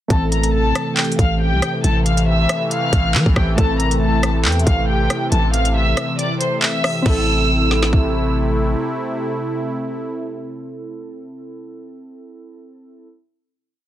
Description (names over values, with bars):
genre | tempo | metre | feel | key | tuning
hip hop, drill | 138 BPM | 4/4 | half-time | A minor | A4 = 441 Hz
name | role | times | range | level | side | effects
rich chamber violin section | melody | 0.1-8.3 s | G4 to F6 | -22 LUFS | left 1 dB | low-pass filter
warbly lo-fi synth keys | accompaniment | 0.1-13.1 s | E3 to A4 | -24 LUFS | right 1 dB | chorus, low-pass filter
sweeping resonant pad | sustained chords | 0.1-11.3 s | C3 to E4 | -24 LUFS | left 1 dB | chorus
growling 808-style bass | bass | 0.1-8.8 s | A1 to E3 | -18 LUFS | equal | none
drill drum kit | drums | 0.1-8.0 s | crash cymbal, handclaps, hi-hat, kick drum, rim click, snare drum | -19 LUFS | equal | vintage 12-bit sampler grit
room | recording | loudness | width
little or no reverb | dense, heavily limited modern master | -15 LUFS | side -12 dB against mid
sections
0.1-7.1 hook; 7.1-10.5 final chord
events
kick muted 6.2-7.1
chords
0.1 Am